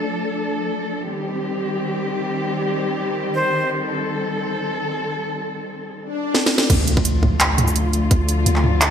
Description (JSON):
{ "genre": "half-time drum and bass", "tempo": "170 BPM", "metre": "4/4", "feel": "swing 54% on 16ths, half-time", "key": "D phrygian", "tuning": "A4 = 440 Hz", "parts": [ { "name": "dark symphonic cello section", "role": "sustained chords", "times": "0.0-8.9 s", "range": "D3 to A4", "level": "-23 LUFS", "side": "left 1 dB", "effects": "sidechain pumping" }, { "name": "breathy bright jazz flute", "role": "melody", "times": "3.3-3.7 s", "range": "C5", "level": "-23 LUFS", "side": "equal", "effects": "ping-pong delay" }, { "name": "swell and impact", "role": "sound effects", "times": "6.1-8.1 s", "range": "none", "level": "-26 LUFS", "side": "left 1 dB", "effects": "none" }, { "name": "drum and bass drum kit", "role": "drums", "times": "6.3-8.9 s", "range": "crash cymbal, handclaps, hi-hat, shaker, snare drum, toms", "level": "-18 LUFS", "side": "right 1 dB", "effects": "overdrive, gated reverb" }, { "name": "long sustained 808-style bass", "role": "bass", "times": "6.7-8.9 s", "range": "D2", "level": "-19 LUFS", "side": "equal", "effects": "none" }, { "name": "electronic kick drum", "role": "drums", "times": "6.7-8.2 s", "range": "none", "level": "-17 LUFS", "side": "equal", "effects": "overdrive" } ], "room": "wet lush hall reverb, RT60 1.9 s, digital ambience", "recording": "bright 1980s-style digital production", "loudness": "-18 LUFS", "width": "side -8 dB against mid", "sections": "0.0-6.7 A section; 6.7-8.9 B section", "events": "swell 6.1-6.7; drum fill 6.3-6.7; drop 6.7-8.9; impact 6.7-8.1", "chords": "0.0 Dm; 1.1 Cm; 6.7 Dm" }